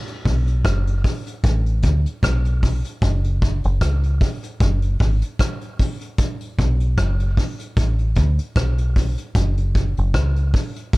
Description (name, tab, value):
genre	dub reggae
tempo	76 BPM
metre	4/4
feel	swing 56% on 16ths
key	B dorian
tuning	A4 = 440 Hz
part	vintage brush drum kit	drums	0.1-11.0 s	hi-hat, kick drum, rim click	-21 LUFS	equal	none
part	deep dub fingered electric bass	bass	0.3-10.5 s	F#1 to D2	-18 LUFS	equal	none
room	little or no reverb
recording	none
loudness	-18 LUFS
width	side -22 dB against mid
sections	0.0-11.0 A section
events	none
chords	none